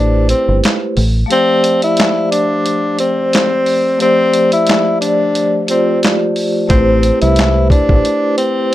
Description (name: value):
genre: hip hop, boom-bap hip-hop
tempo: 89 BPM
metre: 4/4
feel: swing 55% on 16ths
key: unclear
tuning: A4 = 441 Hz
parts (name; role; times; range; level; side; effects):
- breathy tenor saxophone; melody; 0.0-8.7 s; C4 to E4; -14 LUFS; left 1 dB; high-pass filter, low-pass filter, tape echo
- vibraphone with medium mallets; accompaniment; 0.0-8.7 s; F3 to D5; -16 LUFS; equal; cassette tape, high-pass filter, low-pass filter
- deep dub fingered electric bass; bass; 0.0-1.2, 6.7-8.0 s; G1 to C2; -14 LUFS; equal; none
- boom bap sampler-style drum kit; drums; 0.3-8.7 s; handclaps, hi-hat, kick drum, snare drum; -16 LUFS; equal; none
room: light reverb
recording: none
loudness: -11 LUFS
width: side -14 dB against mid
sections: 0.0-8.7 A section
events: break 0.0-6.7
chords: 0.0 Am7; 1.0 F6/A; 6.7 Am7